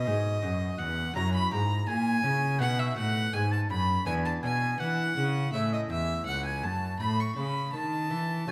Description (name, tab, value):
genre	classical, baroque-style sonata movement with continuo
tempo	82 BPM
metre	4/4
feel	straight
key	unclear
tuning	A4 = 440 Hz
part	warm violin	melody	0.0-8.5 s	D#5 to C#6	-36 LUFS	equal	none
part	warm oboe	second line	0.0-8.5 s	D#5 to C#6	-36 LUFS	equal	none
part	lute	accompaniment	0.0-8.5 s	E2 to F#4	-38 LUFS	equal	none
part	rich cello	bass	0.0-8.5 s	C#2 to E3	-32 LUFS	equal	none
room	moderate recital hall reverb, RT60 1.5 s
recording	none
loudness	-29 LUFS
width	mono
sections	0.0-8.5 A section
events	none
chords	0.0 B; 1.2 F#7; 2.6 B; 4.1 E5; 5.5 A; 7.0 F#m/A (rootless)